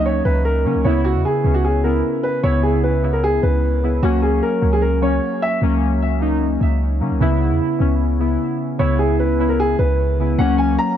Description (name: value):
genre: hip hop, trap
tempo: 151 BPM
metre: 4/4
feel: half-time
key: C# dorian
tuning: A4 = 438 Hz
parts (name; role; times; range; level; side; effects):
- dark concert grand piano; melody; 0.0-5.6, 8.8-11.0 s; F#4 to A#5; -21 LUFS; equal; low-pass filter, ping-pong delay
- warbly lo-fi synth keys; accompaniment; 0.0-11.0 s; C#3 to E4; -20 LUFS; left 1 dB; chorus, low-pass filter
- clean 808-style bass; bass; 0.0-10.8 s; C#2 to C#3; -19 LUFS; equal; none
room: little or no reverb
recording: none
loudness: -16 LUFS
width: side -10 dB against mid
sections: 0.0-10.4 A section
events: none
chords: 0.0 F#/C#; 0.8 C#m7; 4.0 F#/C#; 7.2 C#m7; 10.4 F#/C#